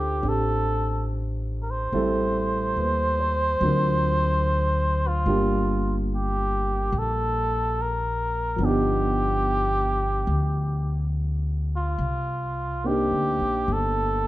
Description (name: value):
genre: jazz ballad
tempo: 71 BPM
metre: 4/4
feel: swing 68% on 8ths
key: unclear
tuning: A4 = 440 Hz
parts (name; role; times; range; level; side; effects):
- trumpet with cup mute; melody; 0.0-14.3 s; F4 to C5; -26 LUFS; right 1 dB; none
- dark concert grand piano; accompaniment; 0.0-14.3 s; F3 to C5; -28 LUFS; equal; none
- upright bass; bass; 0.0-14.3 s; G1 to Eb2; -26 LUFS; equal; none
room: moderate large studio reverb, RT60 1.2 s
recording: dark, warm production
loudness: -22 LUFS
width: side -16 dB against mid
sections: 0.0-14.3 A section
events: none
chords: 0.0 Dm7; 1.9 Am7; 3.6 D7alt; 5.3 Gm9; 8.6 G7b13; 12.0 Cm9